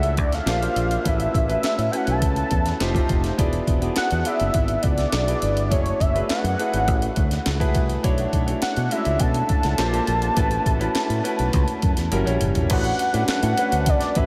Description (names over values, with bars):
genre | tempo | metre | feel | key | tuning
polished 1980s jazz-funk pop | 103 BPM | 4/4 | straight | A major | A4 = 440 Hz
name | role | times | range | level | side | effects
fat analog lead | melody | 0.0-14.3 s | C#5 to A5 | -28 LUFS | equal | chorus, analog delay
clear concert grand piano | accompaniment | 0.0-14.3 s | G3 to D5 | -28 LUFS | equal | subtle chorus
fingered electric bass | bass | 0.0-14.3 s | E1 to B2 | -27 LUFS | equal | none
breakbeat sampler-style drum kit | drums | 0.0-14.3 s | crash cymbal, hi-hat, kick drum, snare drum, toms | -26 LUFS | equal | none
room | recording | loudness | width
moderate huge ambient reverb, RT60 7.8 s | dreamy mix soaked in reverb | -21 LUFS | mono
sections
0.0-12.7 A section; 12.7-14.3 B section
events
drum fill 12.1-12.7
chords
0.5 Bb69; 1.1 A69; 2.8 F9; 3.4 E9; 5.7 F#m7; 8.0 Bm11; 9.8 Bb69; 10.4 A69; 12.1 F#7b9; 12.7 Bm9/A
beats
0.47 | 1.05 1.63 2.22 2.80 | 3.38 3.97 4.55 5.13 | 5.71 6.30 6.88 7.46 | 8.04 8.63 9.21 9.79 | 10.37 10.96 11.54 12.12 | 12.70 13.28 13.86